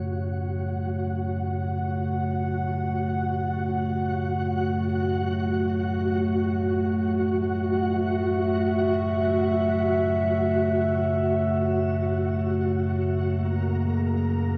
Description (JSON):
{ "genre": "dark ambient drone", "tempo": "free time", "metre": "none", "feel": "none", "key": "F# minor", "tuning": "A4 = 440 Hz", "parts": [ { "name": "dark analog pad", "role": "sustained chords", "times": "0.0-14.6 s", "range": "A3 to F#5", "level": "-28 LUFS", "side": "equal", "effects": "chorus, shimmer reverb" }, { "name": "deep rumbling drone", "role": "drone", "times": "0.0-14.6 s", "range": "F#2 to C#3", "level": "-30 LUFS", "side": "equal", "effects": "built-in reverb" }, { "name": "flickering grainy texture", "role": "texture", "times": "0.0-14.6 s", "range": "F#4 to A#5", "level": "-35 LUFS", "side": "equal", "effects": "built-in reverb, shimmer reverb" } ], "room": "wet cathedral reverb, RT60 5.5 s", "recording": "in a vast, echoing space", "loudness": "-25 LUFS", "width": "mono", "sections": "0.0-14.6 A section", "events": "filter sweep on synth drone 0.0-14.6", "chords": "0.0 F#m; 13.3 A#m7", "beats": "free time" }